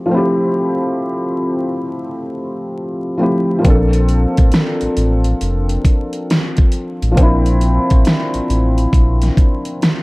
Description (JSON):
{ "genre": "lo-fi hip hop", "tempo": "68 BPM", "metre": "4/4", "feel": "swing 65% on 16ths", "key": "Bb lydian", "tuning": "A4 = 442 Hz", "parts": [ { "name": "felt-muted upright piano", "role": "accompaniment", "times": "0.0-10.0 s", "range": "F3 to A4", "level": "-17 LUFS", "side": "left 1 dB", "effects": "cassette tape, low-pass filter" }, { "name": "sub bass with octave", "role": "bass", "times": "3.6-9.3 s", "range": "F1 to Bb1", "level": "-15 LUFS", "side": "equal", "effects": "none" }, { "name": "dubstep drum kit", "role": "drums", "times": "3.6-10.0 s", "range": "hi-hat, kick drum, snare drum", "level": "-14 LUFS", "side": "equal", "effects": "overdrive" } ], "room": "light reverb", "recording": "dark, warm production, vinyl crackle", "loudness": "-13 LUFS", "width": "side -24 dB against mid", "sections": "0.0-3.6 A section; 3.6-10.0 B section", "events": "none", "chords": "0.0 Fmaj9; 3.6 Bbmaj9" }